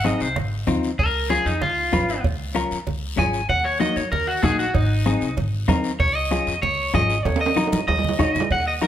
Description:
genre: latin, cumbia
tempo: 192 BPM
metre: 4/4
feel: straight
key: Eb minor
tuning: A4 = 439 Hz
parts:
  - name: electric guitar at the edge of break-up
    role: melody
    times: 0.0-8.9 s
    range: Eb4 to Ab5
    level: -23 LUFS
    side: equal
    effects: spring reverb
  - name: semi-hollow electric guitar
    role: accompaniment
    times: 0.0-8.9 s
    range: Bb3 to Db5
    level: -24 LUFS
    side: left 4 dB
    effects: none
  - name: upright bass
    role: bass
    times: 0.0-8.9 s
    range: Ab1 to Gb2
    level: -26 LUFS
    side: equal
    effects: none
  - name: bombo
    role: percussion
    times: 0.0-8.9 s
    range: none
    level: -26 LUFS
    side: right 2 dB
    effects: none
  - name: congas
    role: percussion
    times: 0.1-8.9 s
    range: none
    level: -29 LUFS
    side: right 2 dB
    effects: none
  - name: guiro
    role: percussion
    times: 0.1-8.9 s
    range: none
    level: -37 LUFS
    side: left 6 dB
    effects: none
  - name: cowbell and timbales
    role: percussion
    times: 0.4-8.7 s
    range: none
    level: -28 LUFS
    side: right 6 dB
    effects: none
room: moderate large studio reverb, RT60 1.1 s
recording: minimal, uncompressed stereo recording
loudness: -19 LUFS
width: side -11 dB against mid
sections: 0.0-8.5 A section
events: clean electric guitar solo 0.0-8.5; drum fill 7.3-8.5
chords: 0.0 Ab; 1.0 Db; 3.5 Ebm; 4.7 Ab; 6.0 Db; 7.3 Ebm7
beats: 0.05 0.36 0.68 | 0.99 1.30 1.62 1.93 | 2.24 2.56 2.87 3.18 | 3.50 3.81 4.12 4.44 | 4.75 5.06 5.38 5.69 | 6.00 6.31 6.63 6.94 | 7.25 7.57 7.88 8.19 | 8.51 8.82

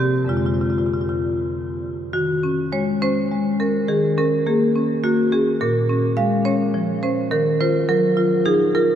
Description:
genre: classical, contemporary piece for solo marimba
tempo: 69 BPM (dotted quarters)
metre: 6/8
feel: rubato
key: Eb dorian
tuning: A4 = 437 Hz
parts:
  - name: marimba with medium hard mallets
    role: solo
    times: 0.0-9.0 s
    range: F2 to F5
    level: -17 LUFS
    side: equal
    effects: none
room: wet cathedral reverb, RT60 7.2 s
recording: in a vast, echoing space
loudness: -18 LUFS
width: side -9 dB against mid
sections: 0.0-2.1 A section; 2.1-9.0 B section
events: none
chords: 0.3 Fm6; 2.1 Ebm7; 3.9 Dbsus2/Eb; 5.6 Bbm7; 7.3 Ebmadd9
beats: | 0.30 1.23 | 2.14 3.02 | 3.89 4.75 | 5.61 6.45 | 7.31 8.16

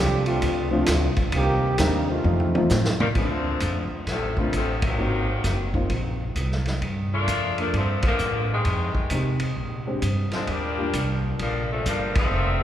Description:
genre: jazz, big band swing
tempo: 131 BPM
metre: 4/4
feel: swing 65% on 8ths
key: Bb major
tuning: A4 = 440 Hz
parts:
  - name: bright trombone section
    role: second line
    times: 0.0-2.7 s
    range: Eb3 to G4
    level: -26 LUFS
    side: right 1 dB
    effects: none
  - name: upright bass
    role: bass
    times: 0.0-12.6 s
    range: F1 to C3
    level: -25 LUFS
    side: equal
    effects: none
  - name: vintage drum kit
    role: drums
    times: 0.3-12.2 s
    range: hi-hat, kick drum, ride cymbal, snare drum, toms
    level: -28 LUFS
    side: equal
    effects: none
  - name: warm baby grand piano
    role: accompaniment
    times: 0.7-10.9 s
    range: Eb3 to A4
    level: -30 LUFS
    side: left 1 dB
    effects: none
  - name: bright saxophone section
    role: melody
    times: 3.0-12.6 s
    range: A2 to F4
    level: -27 LUFS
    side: left 2 dB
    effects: none
room: wet church reverb, RT60 3.3 s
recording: recorded in a church or concert hall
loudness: -21 LUFS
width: side -11 dB against mid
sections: 0.0-3.2 A section; 3.2-12.6 B section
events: trombone section solo 0.0-3.2; drum fill 2.2-3.2; band accent 4.8, 8.0, 12.1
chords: 0.0 Dm7; 1.3 Cm7; 2.2 F7; 3.2 Bbmaj9 (rootless); 5.0 Ab9; 6.8 Gm9; 8.7 Fm9; 9.6 Bb13; 10.5 Ebmaj9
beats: 0.42 0.88 | 1.33 1.79 2.24 2.70 | 3.16 3.61 4.07 4.53 | 4.99 5.44 5.90 6.36 | 6.82 7.28 7.73 8.19 | 8.65 9.11 9.57 10.03 | 10.48 10.94 11.40 11.86 | 12.31

